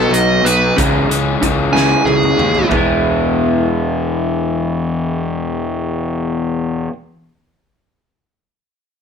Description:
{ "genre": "quiet-loud alternative rock", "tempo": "62 BPM (dotted quarters)", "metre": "6/8", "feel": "straight", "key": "E major", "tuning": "A4 = 441 Hz", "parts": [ { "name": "dark smooth lead guitar", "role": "melody", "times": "0.0-2.7 s", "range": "G#4 to G#5", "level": "-16 LUFS", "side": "right 4 dB", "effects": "overdrive" }, { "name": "electric guitar through a small old amp", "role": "arpeggios", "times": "0.0-6.9 s", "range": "B2 to E4", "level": "-19 LUFS", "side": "right 2 dB", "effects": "none" }, { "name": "overdriven electric guitar", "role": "riff", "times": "0.0-6.9 s", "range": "E2 to D#4", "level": "-19 LUFS", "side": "left 7 dB", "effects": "none" }, { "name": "fuzz picked electric bass", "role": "bass", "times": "0.0-6.9 s", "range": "E1 to D#2", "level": "-20 LUFS", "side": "right 1 dB", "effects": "overdrive" }, { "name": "loose indie drum kit", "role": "drums", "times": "0.1-2.9 s", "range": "hi-hat, kick drum, snare drum, toms", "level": "-22 LUFS", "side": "right 1 dB", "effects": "none" } ], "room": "moderate studio reverb, RT60 0.8 s", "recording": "band playing live in one room", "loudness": "-13 LUFS", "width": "side -6 dB against mid", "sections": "0.0-2.7 A section; 2.7-6.6 B section", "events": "lead electric guitar solo 0.0-2.7; drum fill 1.7-2.7", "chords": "0.0 B; 0.8 C#madd9; 2.7 E" }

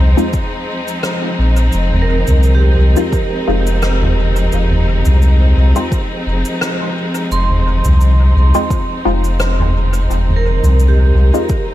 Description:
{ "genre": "ambient dub", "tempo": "86 BPM", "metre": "4/4", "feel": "swing 54% on 16ths", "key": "F minor", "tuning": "A4 = 440 Hz", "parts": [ { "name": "clear studio string section", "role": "sustained chords", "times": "0.0-11.7 s", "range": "F3 to Eb4", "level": "-20 LUFS", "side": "left 1 dB", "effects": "none" }, { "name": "vibraphone with hard mallets", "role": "arpeggios", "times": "0.0-11.7 s", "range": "G4 to C6", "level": "-24 LUFS", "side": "right 6 dB", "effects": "dub echo" }, { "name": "filtered dub chord stab", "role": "stabs", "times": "0.0-11.6 s", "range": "Ab3 to F4", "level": "-21 LUFS", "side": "left 2 dB", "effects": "phaser, analog chorus, dub echo" }, { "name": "warm sub bass", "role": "bass", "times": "0.0-11.3 s", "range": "F1 to C2", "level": "-11 LUFS", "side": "equal", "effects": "none" }, { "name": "soft-mallet drum kit", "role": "drums", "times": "0.2-11.6 s", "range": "cabasa, rim click, toms", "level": "-21 LUFS", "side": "equal", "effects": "studio reverb, dub echo" }, { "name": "electronic kick drum", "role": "drums", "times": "0.3-11.6 s", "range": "none", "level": "-17 LUFS", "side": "equal", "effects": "overdrive, studio reverb" } ], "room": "small room ambience", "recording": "none", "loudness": "-11 LUFS", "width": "side -14 dB against mid", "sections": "0.0-11.7 A section", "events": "none", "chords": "0.0 Fm7" }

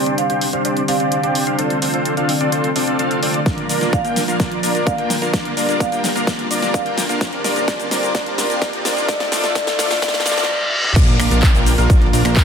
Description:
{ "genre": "EDM, festival progressive house", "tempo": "128 BPM", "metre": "4/4", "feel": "straight", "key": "Bb major", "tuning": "A4 = 445 Hz", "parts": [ { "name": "vibraphone with medium mallets", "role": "melody", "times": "0.0-10.5 s", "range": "C5 to G5", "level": "-24 LUFS", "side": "left 1 dB", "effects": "ping-pong delay" }, { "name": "lush unison pad", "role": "sustained chords", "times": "0.0-12.4 s", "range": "D3 to C5", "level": "-25 LUFS", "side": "equal", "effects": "chorus, sidechain pumping" }, { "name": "dense compressed supersaw", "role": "riff", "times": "0.0-12.4 s", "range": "A3 to G5", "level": "-20 LUFS", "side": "equal", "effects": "sidechain pumping, low-pass filter, ping-pong delay" }, { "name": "riser, reverse cymbal and downlifter", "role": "sound effects", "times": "1.9-12.4 s", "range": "none", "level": "-27 LUFS", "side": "equal", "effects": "none" }, { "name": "big-room dance drum kit", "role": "drums", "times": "0.1-12.4 s", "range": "crash cymbal, finger snaps, handclaps, hi-hat, shaker, snare drum, toms", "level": "-22 LUFS", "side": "equal", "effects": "none" }, { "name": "electronic kick drum", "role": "drums", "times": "3.5-12.4 s", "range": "none", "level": "-16 LUFS", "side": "equal", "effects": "none" }, { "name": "fat analog bass", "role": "bass", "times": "11.0-12.4 s", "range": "Bb1", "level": "-18 LUFS", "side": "equal", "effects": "sidechain pumping" } ], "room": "moderate recital hall reverb, RT60 1.6 s", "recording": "high-pass filter", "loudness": "-15 LUFS", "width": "side -7 dB against mid", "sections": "0.0-11.0 A section; 11.0-12.4 B section", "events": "build-up 0.0-11.0; filter sweep on supersaw synth 0.0-11.0; filter sweep on analog synth pad 0.0-11.0; filter sweep 0.0-11.0; drum fill 3.5-10.5, 10.5-11.0; reverse cymbal 10.0-11.0; drop 11.0-12.4", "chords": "0.0 Csus2; 1.6 Dm7; 3.5 Bb; 7.2 Csus2; 9.1 Dm7; 11.0 Bb" }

